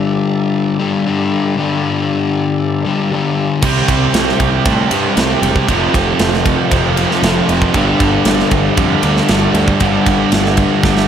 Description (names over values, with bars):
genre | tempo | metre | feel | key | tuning
hard rock | 117 BPM | 4/4 | straight | unclear | A4 = 441 Hz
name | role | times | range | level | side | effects
overdriven tonewheel organ | sustained chords | 0.0-11.1 s | F3 to D5 | -26 LUFS | right 2 dB | none
sludgy distorted guitar | riff | 0.0-11.1 s | F2 to C4 | -16 LUFS | left 4 dB | overdrive, slapback echo
distorted electric guitar | riff | 3.6-11.1 s | F2 to C4 | -17 LUFS | right 11 dB | overdrive, slapback echo
fuzz picked electric bass | bass | 3.6-11.1 s | E1 to A2 | -19 LUFS | right 1 dB | overdrive
tight metal drum kit | drums | 3.6-11.1 s | crash cymbal, kick drum, ride cymbal, snare drum | -16 LUFS | right 1 dB | none
room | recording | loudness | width
moderate concert hall reverb, RT60 2.0 s, small room ambience | big arena sound | -12 LUFS | side -8 dB against mid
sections
0.0-11.1 A section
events
drum fill 10.8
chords
0.0 G5; 3.6 C5; 5.7 F5; 7.7 G5